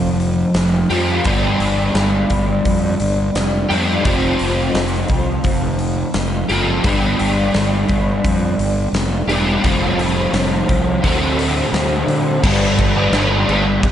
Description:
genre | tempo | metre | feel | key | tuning
rock, shoegaze and dream pop | 86 BPM | 4/4 | straight | G mixolydian | A4 = 445 Hz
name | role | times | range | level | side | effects
overdriven semi-hollow guitar | riff | 0.0-13.8 s | G2 to G4 | -17 LUFS | equal | ensemble chorus
fuzz fingered electric bass | bass | 0.0-13.9 s | E1 to D3 | -21 LUFS | equal | overdrive
huge arena drum kit | drums | 0.2-13.9 s | crash cymbal, hi-hat, kick drum, snare drum | -22 LUFS | equal | none
room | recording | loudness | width
moderate plate reverb, RT60 2.0 s, small room reverb | dreamy mix soaked in reverb, nothing above 10.4 kHz | -14 LUFS | side -10 dB against mid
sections
0.0-12.4 A section; 12.4-13.9 B section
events
none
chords
0.0 Fsus2; 1.2 G; 4.0 Fsus2; 6.8 G; 9.6 Fsus2; 11.0 D7; 12.4 G

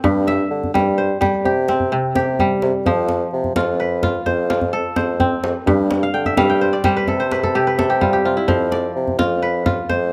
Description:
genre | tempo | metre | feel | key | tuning
west african traditional, West African string and xylophone music | 85 BPM (dotted quarters) | 12/8 | straight | F lydian | A4 = 441 Hz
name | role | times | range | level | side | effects
kora | arpeggios | 0.0-10.1 s | G2 to G5 | -21 LUFS | equal | slapback echo
mellow bassoon | bass | 0.0-10.1 s | F2 to D3 | -23 LUFS | equal | none
djembe | percussion | 0.0-10.0 s | none | -26 LUFS | equal | none
room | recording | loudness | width
little or no reverb | recorded outdoors, with no room sound | -18 LUFS | mono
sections
0.0-8.5 A section; 8.5-10.1 B section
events
kora fill 6.0-8.5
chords
0.0 G5; 1.5 C5; 2.9 F; 5.7 G5; 7.1 C5; 8.5 F

